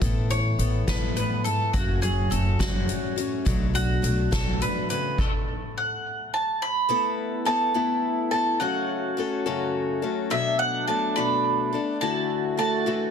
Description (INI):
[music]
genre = indie folk with a building arrangement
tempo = 70 BPM (dotted quarters)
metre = 6/8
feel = straight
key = A major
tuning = A4 = 440 Hz
[part]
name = fingerpicked steel-string acoustic guitar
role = accompaniment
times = 0.0-6.9 s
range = F#2 to F#4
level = -31 LUFS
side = equal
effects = none
[part]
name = picked acoustic archtop guitar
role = accompaniment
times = 0.0-13.1 s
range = F#2 to A4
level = -29 LUFS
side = left 8 dB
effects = none
[part]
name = upright bass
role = bass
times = 0.0-4.6 s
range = F#1 to B1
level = -26 LUFS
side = equal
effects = none
[part]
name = soft-mallet drum kit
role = drums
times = 0.0-5.3 s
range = crash cymbal, hi-hat, kick drum, snare drum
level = -28 LUFS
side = equal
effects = none
[part]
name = bowl-back mandolin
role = melody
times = 0.3-13.1 s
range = F#4 to B5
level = -26 LUFS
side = right 2 dB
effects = tape echo
[part]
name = mellow brass ensemble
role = sustained chords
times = 6.9-13.1 s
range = D3 to F#4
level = -31 LUFS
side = right 2 dB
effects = none
[part]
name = clear French horn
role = second line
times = 12.6-13.1 s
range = A3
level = -26 LUFS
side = right 6 dB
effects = none
[sound]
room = light reverb, studio ambience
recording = dense, heavily limited modern master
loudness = -22 LUFS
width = side -7 dB against mid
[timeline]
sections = 0.0-6.9 A section; 6.9-13.1 B section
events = stop 5.2-6.9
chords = 0.0 Asus2; 1.7 F#m; 3.5 Bm7; 5.2 N.C.; 6.9 Asus2; 8.6 F#m; 10.3 Bm7; 12.0 Dadd9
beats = | 0.02 0.88 | 1.74 2.60 | 3.46 4.32 | 5.18 6.04 | 6.90 7.75 | 8.61 9.46 | 10.31 11.16 | 12.01 12.86